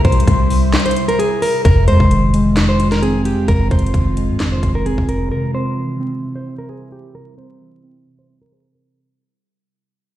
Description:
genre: hip hop, trap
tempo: 131 BPM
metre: 4/4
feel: half-time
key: F minor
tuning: A4 = 440 Hz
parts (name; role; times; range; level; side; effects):
- nylon-string guitar; melody; 0.0-9.0 s; G4 to C5; -21 LUFS; equal; low-pass filter, tape echo
- breathy flute-like synth lead; second line; 0.0-1.2 s; C5; -25 LUFS; left 5 dB; chorus, tape echo
- ethereal airy pad; sustained chords; 0.0-8.9 s; C3 to F4; -25 LUFS; left 1 dB; ensemble chorus, built-in reverb, phaser, low-pass filter
- warm 808-style bass; bass; 0.0-5.3 s; F1 to Ab2; -17 LUFS; equal; none
- trap drum kit; drums; 0.0-5.2 s; handclaps, hi-hat, kick drum, snare drum; -17 LUFS; equal; none
- muted felt-like synth keys; accompaniment; 1.6-9.0 s; F2 to C5; -18 LUFS; equal; chorus, low-pass filter
room: little or no reverb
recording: played on a big sound system in a bare room, stone room reverb, vinyl crackle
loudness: -13 LUFS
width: side -13 dB against mid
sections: 0.0-1.7 A section; 1.7-9.0 B section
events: break 0.7-1.7; fade-out 1.7-9.0; filter sweep 1.7-9.0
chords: 0.0 C; 1.7 Fm7; 5.3 C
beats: 0.28 0.73 1.19 | 1.65 2.11 2.57 3.02 | 3.48 3.94 4.40 4.86 | 5.32 5.77 6.23 6.69 | 7.15 7.61 8.06 8.52

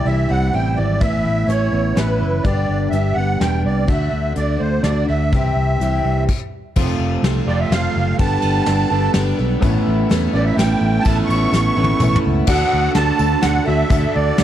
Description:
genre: folk rock and heartland rock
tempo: 126 BPM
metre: 3/4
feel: straight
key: unclear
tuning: A4 = 440 Hz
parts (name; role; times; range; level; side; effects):
- musette accordion; melody; 0.0-14.4 s; B4 to C#6; -22 LUFS; right 3 dB; none
- picked twelve-string acoustic guitar; accompaniment; 0.0-14.4 s; G2 to A4; -24 LUFS; left 8 dB; none
- electric guitar at the edge of break-up; riff; 0.0-14.4 s; F2 to A4; -22 LUFS; right 6 dB; wide subtle chorus
- fingered electric bass; bass; 0.0-14.4 s; E1 to E2; -20 LUFS; left 1 dB; none
- soft brush drum kit; drums; 1.0-14.4 s; crash cymbal, hi-hat, kick drum, ride cymbal, snare drum, toms; -21 LUFS; left 1 dB; none
- bright tonewheel organ; sustained chords; 6.8-14.4 s; F#4 to C6; -35 LUFS; left 3 dB; none
- clear upright piano; accompaniment; 9.6-14.4 s; D4 to D5; -34 LUFS; left 7 dB; none
- tambourine; percussion; 9.6-14.0 s; none; -40 LUFS; left 15 dB; none
room: light reverb, small room ambience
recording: dark, warm production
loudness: -15 LUFS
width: side -11 dB against mid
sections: 0.0-6.8 A section; 6.8-12.5 B section; 12.5-14.4 C section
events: stop 6.3-6.8; drum fill 11.5-12.5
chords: 0.0 C; 1.0 Aadd9; 2.5 G; 3.9 D; 5.3 C; 6.8 F; 8.2 Gadd9; 9.6 Aadd9; 12.5 D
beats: 0.06 0.54 | 1.02 1.50 1.97 | 2.45 2.93 3.41 | 3.89 4.37 4.85 | 5.33 5.81 6.29 | 6.76 7.24 7.72 | 8.20 8.68 9.15 | 9.63 10.11 10.58 | 11.06 11.54 12.01 | 12.49 12.96 13.44 | 13.91 14.39

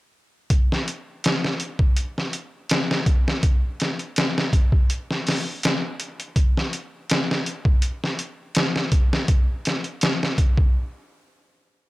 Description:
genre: trip hop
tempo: 82 BPM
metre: 4/4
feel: straight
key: none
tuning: none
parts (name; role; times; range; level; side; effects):
- trip hop sampler-style drum kit; drums; 0.5-10.7 s; hi-hat, kick drum, snare drum; -20 LUFS; equal; overdrive
room: light reverb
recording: none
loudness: -20 LUFS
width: side -19 dB against mid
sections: 0.5-11.9 A section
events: stop 10.7-11.9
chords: none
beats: | 0.50 1.24 1.97 2.70 | 3.43 4.16 4.89 5.63 | 6.36 7.09 7.82 8.55 | 9.29 10.02

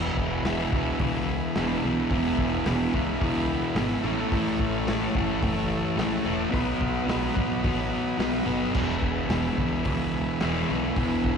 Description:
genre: garage rock duo or trio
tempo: 108 BPM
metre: 4/4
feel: straight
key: E major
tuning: A4 = 440 Hz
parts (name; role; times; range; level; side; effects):
- combo organ; sustained chords; 0.0-11.4 s; E4 to E5; -35 LUFS; left 1 dB; none
- fuzz guitar; riff; 0.0-11.4 s; E2 to B3; -25 LUFS; equal; distortion, slapback echo
- growling picked electric bass; bass; 0.0-11.4 s; E1 to C#2; -32 LUFS; equal; overdrive
- vintage drum kit; drums; 0.0-11.4 s; crash cymbal, hi-hat, kick drum, snare drum; -31 LUFS; equal; none
room: light reverb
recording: live gig heard through the venue's PA, recital hall reverb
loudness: -23 LUFS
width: side -6 dB against mid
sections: 0.0-11.4 A section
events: none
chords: 0.0 E; 4.0 A; 6.5 B; 8.7 E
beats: 0.45 1.01 1.56 | 2.11 2.66 3.22 3.77 | 4.32 4.88 5.43 5.98 | 6.53 7.09 7.64 8.19 | 8.75 9.30 9.85 10.41 | 10.96

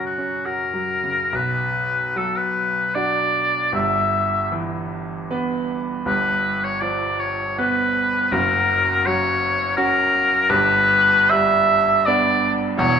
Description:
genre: classical, romantic duo for oboe and grand piano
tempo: 68-84 BPM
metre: 3/4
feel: rubato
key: B minor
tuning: A4 = 442 Hz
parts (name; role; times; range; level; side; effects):
- clear oboe; melody; 0.0-13.0 s; F#4 to E5; -18 LUFS; left 1 dB; none
- bright grand piano; accompaniment; 0.0-13.0 s; E1 to B4; -23 LUFS; right 2 dB; none
room: moderate recital hall reverb, RT60 1.6 s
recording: minimal, uncompressed stereo recording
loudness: -17 LUFS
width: side -7 dB against mid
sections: 0.0-1.3 A section; 1.3-13.0 B section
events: none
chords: 0.0 F#; 1.3 Bm; 3.7 Em/G; 6.1 G7; 8.3 F#; 10.5 G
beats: 0.46 | 1.33 2.17 2.95 | 3.74 4.52 5.31 | 6.07 6.82 7.57 | 8.32 9.05 9.78 | 10.50 11.32 12.07 | 12.79

